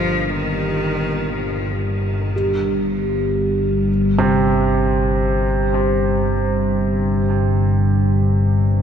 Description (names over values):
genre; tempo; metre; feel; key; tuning
dark ambient drone; free time; none; none; G minor; A4 = 440 Hz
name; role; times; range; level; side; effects
clear cello; melody; 0.0-1.8 s; Eb3 to F3; -25 LUFS; left 1 dB; ping-pong delay
analog drone; drone; 0.0-8.8 s; G1 to Bb2; -18 LUFS; left 1 dB; chorus, phaser
bronze singing bowl; texture; 0.0-8.8 s; G4; -25 LUFS; right 3 dB; none
clear concert grand piano; arpeggios; 4.2-8.8 s; C3; -21 LUFS; right 2 dB; ping-pong delay
room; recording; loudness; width
moderate huge ambient reverb, RT60 8.0 s; none; -16 LUFS; side -8 dB against mid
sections
0.0-2.3 A section; 2.3-8.8 B section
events
none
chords
0.0 Gmadd11